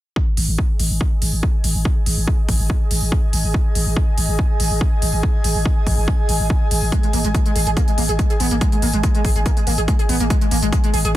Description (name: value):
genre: driving peak-time techno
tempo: 142 BPM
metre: 4/4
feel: straight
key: unclear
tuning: A4 = 444 Hz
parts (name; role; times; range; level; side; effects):
- electronic kick drum; drums; 0.2-11.2 s; none; -18 LUFS; equal; overdrive
- airy breathy pad; texture; 0.8-11.2 s; G#4 to G#5; -27 LUFS; right 1 dB; chorus, sidechain pumping
- growling 808-style bass; bass; 0.4-11.1 s; G#1; -20 LUFS; equal; tube saturation, sidechain pumping, low-pass filter
- electronic hi-hat; drums; 0.4-11.2 s; none; -25 LUFS; equal; overdrive, sidechain pumping on hats
- overdriven synth lead; riff; 6.9-11.2 s; G#3 to G#4; -23 LUFS; right 1 dB; distortion, wide subtle chorus, sidechain pumping, tape echo
room: little or no reverb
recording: dense, heavily limited modern master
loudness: -16 LUFS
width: side -14 dB against mid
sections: 0.2-11.2 A section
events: fade-in on analog synth pad 0.2-11.2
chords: 0.2 G#5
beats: | 0.16 0.58 1.01 1.43 | 1.85 2.27 2.70 3.12 | 3.54 3.96 4.39 4.81 | 5.23 5.66 6.08 6.50 | 6.92 7.34 7.77 8.19 | 8.61 9.04 9.46 9.88 | 10.30 10.73 11.15